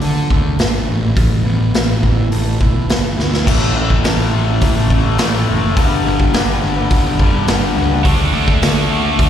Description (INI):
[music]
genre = quiet-loud alternative rock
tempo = 105 BPM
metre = 4/4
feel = straight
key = unclear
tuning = A4 = 440 Hz
[part]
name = electric guitar through a small old amp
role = arpeggios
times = 0.0-8.0 s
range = D3 to B4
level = -22 LUFS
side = equal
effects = lush chorus, slapback echo
[part]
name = fuzz picked electric bass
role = bass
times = 0.0-9.3 s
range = F#1 to D3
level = -18 LUFS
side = equal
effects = overdrive
[part]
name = raw garage drum kit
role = drums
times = 0.0-9.3 s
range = crash cymbal, hi-hat, kick drum, snare drum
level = -16 LUFS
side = equal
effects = none
[part]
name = overdriven electric guitar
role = riff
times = 3.5-9.3 s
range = G2 to D4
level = -20 LUFS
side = left 10 dB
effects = slapback echo
[part]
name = scooped high-gain guitar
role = riff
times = 8.0-9.3 s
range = D3 to D4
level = -19 LUFS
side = right 16 dB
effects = distortion
[sound]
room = little or no reverb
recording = live gig heard through the venue's PA, recital hall reverb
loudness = -12 LUFS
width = side -9 dB against mid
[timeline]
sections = 0.0-3.5 A section; 3.5-9.3 B section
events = drum fill 3.2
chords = 0.0 D; 0.9 Asus2; 3.5 A; 5.8 G; 8.1 D5